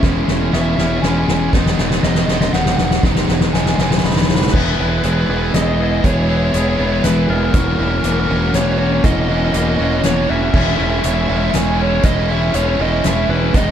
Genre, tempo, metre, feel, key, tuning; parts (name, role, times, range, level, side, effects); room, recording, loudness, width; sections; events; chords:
post-rock; 120 BPM; 3/4; straight; A4 = 440 Hz
clean electric guitar; arpeggios; 0.0-10.5 s; E2 to D#4; -22 LUFS; left 2 dB; spring reverb, tape echo
cranked stack guitar; riff; 0.0-13.7 s; G#2 to F#4; -22 LUFS; right 16 dB; overdrive
tight distorted guitar; riff; 0.0-13.7 s; G#2 to G#4; -23 LUFS; left 16 dB; distortion
fuzz fingered electric bass; bass; 0.0-13.7 s; E1; -19 LUFS; equal; overdrive
soft-mallet drum kit; drums; 0.0-13.7 s; crash cymbal, hi-hat, kick drum, ride cymbal, snare drum; -18 LUFS; equal
biting lead guitar; melody; 0.5-13.7 s; A#4 to B5; -22 LUFS; right 1 dB; overdrive, tape echo
light reverb; dark, warm production; -13 LUFS; side -9 dB against mid
0.0-4.5 A section; 4.5-13.7 B section
build-up 0.0-4.5; drum fill 0.0-4.5
0.0 C#m7/E; 1.5 G#m/E; 4.5 E; 7.5 F#7/E; 10.5 C#m/E